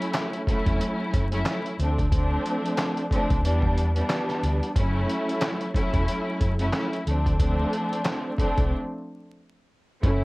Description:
hip hop, boom-bap hip-hop; 91 BPM; 4/4; swing 58% on 16ths; A4 = 438 Hz
warm symphonic string section; accompaniment; 0.0-10.2 s; E3 to E4; -26 LUFS; equal; high-pass filter, low-pass filter
boom bap sampler-style drum kit; drums; 0.0-10.2 s; handclaps, hi-hat, kick drum, snare drum; -26 LUFS; equal
hollow-body short-scale fingered electric bass; bass; 0.7-10.2 s; E1 to E2; -25 LUFS; equal
little or no reverb; worn, warbling old tape, cassette tape, vinyl crackle, warbly pitch drift; -22 LUFS; side -23 dB against mid
0.0-10.0 A section
break 8.7-10.0
0.0 F#m7; 1.8 Dm7; 3.4 Em7; 4.8 F#m7; 7.1 Dm7; 8.7 N.C.

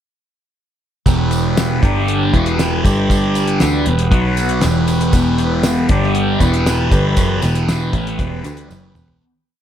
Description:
psychedelic rock; 118 BPM; 4/4; straight; E minor; A4 = 440 Hz
overdriven combo organ; sustained chords; 1.1-9.2 s; D3 to F#5; -24 LUFS; right 3 dB
thick fuzz guitar; riff; 1.1-9.2 s; E2 to D4; -16 LUFS; left 1 dB; distortion, phaser
picked electric bass; bass; 1.1-9.2 s; E1 to D2; -20 LUFS; equal
damped 70s drum kit; drums; 1.1-9.2 s; hi-hat, kick drum, snare drum, toms; -18 LUFS; equal
tambourine; percussion; 1.1-9.1 s; -33 LUFS; right 10 dB
light reverb, small room ambience; -13 LUFS; side -10 dB against mid
1.1-9.2 riff
fade-out 7.2-9.2; drum fill 8.7-9.2
1.1 Em; 1.8 G5; 2.3 Em; 2.8 G5; 3.6 Em; 4.1 B5; 4.6 Em; 5.9 G5; 6.4 Em

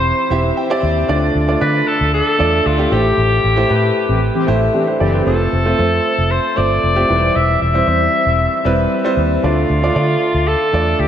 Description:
pop; 115 BPM; 4/4; straight; C major; A4 = 440 Hz
bright alto saxophone; melody; 0.0-11.1 s; F4 to E5; -18 LUFS; left 1 dB; diffuse ambient delay
clear baby grand piano; accompaniment; 0.0-11.1 s; A2 to B5; -17 LUFS; right 1 dB
vintage muted fingered electric bass; bass; 0.0-11.1 s; E1 to D3; -18 LUFS; equal
analog synth brass; stabs; 4.1-5.2 s; E3 to G4; -21 LUFS; left 1 dB; chorus
wet plate reverb, RT60 2.3 s; dreamy mix soaked in reverb; -13 LUFS; side -9 dB against mid
0.0-11.1 A section
grand piano fill 0.3-1.1; band accent 3.2-5.3
0.0 C/E; 1.1 Dm; 2.9 Am7; 5.3 F; 7.1 C/E; 9.4 Dm

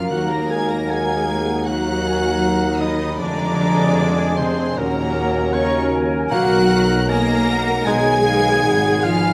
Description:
classical; 77 BPM; 4/4; rubato; A4 = 440 Hz
clear chamber violin section; melody; 0.0-9.3 s; A#5 to A#6; -32 LUFS; equal
mellow oboe; second line; 0.0-9.3 s; A#4 to A#5; -28 LUFS; equal
rich studio violin section; second line; 0.0-9.3 s; A#4 to A#5; -32 LUFS; equal
clear bassoon; accompaniment; 0.0-8.1 s; F#3 to A#3; -30 LUFS; equal
rich studio viola section; accompaniment; 0.0-9.3 s; A#3 to A#4; -26 LUFS; equal
warm French horn section; sustained chords; 0.0-9.3 s; D#3 to D#4; -29 LUFS; equal
concert harp; arpeggios; 0.0-9.3 s; F#2 to A#5; -31 LUFS; equal
dark trumpet section; stabs; 0.0-9.3 s; Ab4 to A#4; -30 LUFS; equal
rich studio cello section; bass; 0.0-9.3 s; A#2 to A#3; -27 LUFS; equal
warm studio double bass section; bass; 0.0-9.3 s; G#1 to F#2; -28 LUFS; equal
clear clarinet; second line; 0.1-8.1 s; C#4 to D#4; -33 LUFS; equal
mellow flute section; second line; 0.1-9.3 s; E#5 to B5; -31 LUFS; equal
warm tuba; bass; 0.1-9.3 s; F1 to D#2; -29 LUFS; equal
wet recital hall reverb, RT60 1.4 s; -18 LUFS; mono
0.0-9.3 A section
0.1 D#m; 3.2 Ddim/F; 4.8 D#m7; 6.3 Bmaj7; 7.9 G#m/B

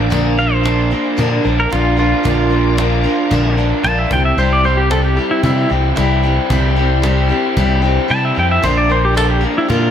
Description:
folk rock and heartland rock; 113 BPM; 4/4; straight; A4 = 440 Hz
picked steel-string acoustic guitar; accompaniment; 0.0-9.9 s; Bb2 to Bb4; -19 LUFS; left 2 dB; slapback echo
bright tonewheel organ; sustained chords; 0.0-9.9 s; Bb3 to D5; -28 LUFS; equal; overdrive, chorus vibrato, slow rotary speaker
raw garage guitar; riff; 0.0-9.9 s; Bb2 to Bb4; -20 LUFS; equal; overdrive, slapback echo
picked electric bass; bass; 0.0-9.9 s; Bb1 to C3; -16 LUFS; equal
cajon; drums; 0.1-9.8 s; -26 LUFS; equal
pedal steel guitar; melody; 0.4-9.9 s; E4 to A5; -18 LUFS; equal; slapback echo
tambourine; percussion; 9.2-9.3 s; -35 LUFS; right 11 dB
moderate lush hall reverb, RT60 1.9 s, small room ambience; big arena sound, faint mains hum; -12 LUFS; side -9 dB against mid
0.1-9.9 A section
pedal steel guitar solo 0.1-9.9; kick and snare drop out 8.1-8.6
0.1 Bb; 4.1 C; 8.6 Bb

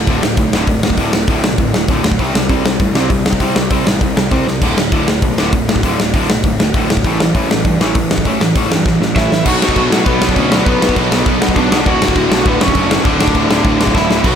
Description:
punk rock; 198 BPM; 4/4; straight; D major; A4 = 441 Hz
distorted electric guitar; riff; 0.0-14.4 s; D2 to C4; -20 LUFS; left 10 dB; overdrive
distorted electric guitar; riff; 0.0-14.4 s; D2 to C4; -19 LUFS; right 10 dB; distortion
fuzz picked electric bass; bass; 0.0-14.4 s; D1 to A2; -20 LUFS; equal; overdrive
big rock drum kit; drums; 0.1-14.3 s; crash cymbal, hi-hat, kick drum, snare drum; -15 LUFS; equal
lead guitar through a small cranked amp; melody; 9.2-14.4 s; B3 to F#5; -18 LUFS; equal; overdrive, tape echo
sludgy distorted guitar; riff; 9.5-14.4 s; D2 to B4; -20 LUFS; equal; overdrive
light reverb; -11 LUFS; side -8 dB against mid
0.0-9.5 A section; 9.5-14.4 B section
drum fill 4.5, 8.9-9.5, 13.9
0.0 D5; 2.2 C5; 4.6 D5; 7.0 A5; 9.5 Bm; 11.9 D

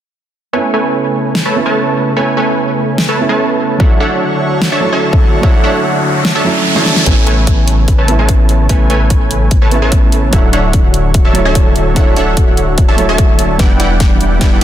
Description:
future bass; 147 BPM; 4/4; half-time; A major; A4 = 437 Hz
felt-muted upright piano; accompaniment; 0.5-14.6 s; F#3 to C#5; -18 LUFS; right 4 dB; sidechain pumping, low-pass filter, tape echo
airy breathy pad; sustained chords; 0.5-14.6 s; C#3 to C#5; -21 LUFS; equal; chorus, sidechain pumping
supersaw stab; riff; 0.5-14.6 s; E3 to A5; -15 LUFS; right 1 dB; sidechain pumping, low-pass filter, tape echo
big-room dance drum kit; drums; 1.4-14.6 s; hi-hat, snare drum; -18 LUFS; equal; high-pass filter on snare, high-pass filter on hats
electronic kick drum; drums; 3.8-14.5 s; -11 LUFS; equal
riser; sound effects; 5.2-7.1, 14.3-14.6 s; -19 LUFS; right 1 dB
long sustained 808-style bass; bass; 7.1-14.6 s; D1 to A1; -15 LUFS; left 1 dB; sidechain pumping
light reverb, digital ambience; dense, heavily limited modern master; -9 LUFS; side -11 dB against mid
0.5-7.1 A section; 7.1-14.6 B section
filter sweep on felt piano 0.5-7.1; riser 5.2-7.1; kick drops out 6.7-7.1; drum fill 6.8-7.1, 13.6-14.6; build-up 7.1-14.6; filter sweep on analog synth pad 7.1-14.6
0.5 Amaj7; 3.8 Dmaj7; 7.1 Amaj7; 10.3 Dmaj7; 13.6 Em7

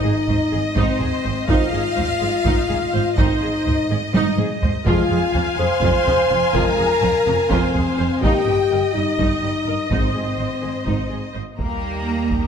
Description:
cinematic, epic orchestral film score; 249 BPM (eighths); 7/8; straight; Ab major; A4 = 440 Hz
rich symphonic violin section; melody; 0.0-12.5 s; Eb5 to Bb5; -28 LUFS; left 3 dB
clear symphonic violin section; second line; 0.0-12.5 s; G4 to C6; -27 LUFS; left 3 dB
clear symphonic viola section; accompaniment; 0.0-12.5 s; Eb4 to F5; -26 LUFS; right 2 dB
dark French horn section; sustained chords; 0.0-12.5 s; G3 to C5; -22 LUFS; left 3 dB
clear symphonic cello section; bass; 0.0-12.5 s; F2 to Bb3; -26 LUFS; right 4 dB
rich symphonic double bass section; bass; 0.0-12.5 s; F1 to Eb2; -26 LUFS; right 4 dB
taiko ensemble; drums; 0.3-12.5 s; -24 LUFS; right 1 dB
dark trombone section; sustained chords; 1.5-10.1 s; Eb3 to C4; -30 LUFS; right 3 dB
timpani; percussion; 9.9-10.6 s; Ab2; -30 LUFS; equal
wet scoring stage reverb, RT60 1.6 s; -17 LUFS; side -7 dB against mid
0.0-11.6 A section
drum fill 4.1-4.9
0.0 Ab; 4.9 Fm; 8.2 Eb/G; 9.9 Ab; 11.6 Eb

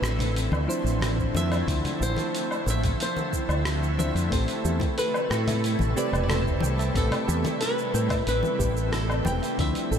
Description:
sunset chillout; 91 BPM; 4/4; straight; A minor; A4 = 441 Hz
flamenco guitar; melody; 0.0-10.0 s; A4 to G5; -31 LUFS; equal; tape echo
soft electric-piano-like synth keys; accompaniment; 0.0-10.0 s; F3 to C5; -32 LUFS; equal; chorus, auto-pan, tape echo
shimmering ambient pad; sustained chords; 0.0-10.0 s; C3 to A4; -31 LUFS; equal; chorus, built-in reverb
mellow fretless electric bass; bass; 0.0-10.0 s; E1 to A2; -26 LUFS; equal; tube saturation
dusty soul sampler-style drum kit; drums; 0.0-10.0 s; hi-hat, rim click, shaker, woodblock; -33 LUFS; right 1 dB
bongos and congas; percussion; 0.0-9.4 s; -35 LUFS; left 3 dB
electronic kick drum; drums; 1.2-9.7 s; -29 LUFS; equal
soft round pluck; arpeggios; 4.7-10.0 s; G4 to G5; -36 LUFS; right 2 dB; chorus, tape echo
moderate huge ambient reverb, RT60 7.4 s; dreamy mix soaked in reverb; -23 LUFS; side -8 dB against mid
0.0-10.0 A section
0.0 Dm9; 4.3 Am9

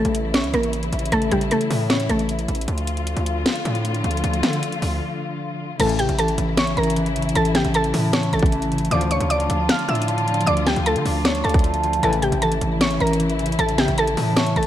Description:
hip hop, trap; 154 BPM; 4/4; half-time; A4 = 440 Hz
mallet-like synth pluck; melody; 0.0-2.6, 5.8-14.7 s; G3 to F6; -22 LUFS; equal; chorus, ping-pong delay
dark studio string section; sustained chords; 0.0-14.7 s; C#3 to F4; -27 LUFS; left 2 dB
distorted 808-style bass; bass; 0.0-14.7 s; A1 to D3; -24 LUFS; equal; distortion
trap drum kit; drums; 0.0-14.7 s; crash cymbal, hi-hat, kick drum, snare drum; -24 LUFS; equal
concert harp; accompaniment; 5.8-14.7 s; A2 to D5; -24 LUFS; equal
mellow brass ensemble; stabs; 5.8-6.1, 8.9-9.2, 12.0-12.3 s; A2 to F3; -27 LUFS; left 5 dB; ping-pong delay
light reverb, small room ambience; -18 LUFS; side -12 dB against mid
0.0-5.8 A section; 5.8-14.7 B section
break 2.7-5.8
0.0 A; 2.7 Dm; 5.8 A; 8.9 Dm; 12.0 A

